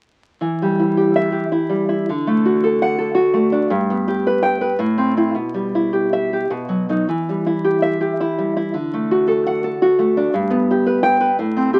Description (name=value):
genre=romantic piece for solo classical guitar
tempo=103-116 BPM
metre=3/4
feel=rubato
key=E minor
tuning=A4 = 440 Hz
part: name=nylon-string guitar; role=solo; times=0.4-11.8 s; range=G2 to G5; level=-18 LUFS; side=equal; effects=none
room=moderate studio reverb, RT60 0.9 s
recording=very old 78 rpm record, vinyl crackle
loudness=-18 LUFS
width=mono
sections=0.4-11.8 A section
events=none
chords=0.4 Em; 2.1 D; 3.7 G; 4.8 Am; 5.4 Em/B; 6.5 B; 7.1 Em; 8.7 D; 10.3 G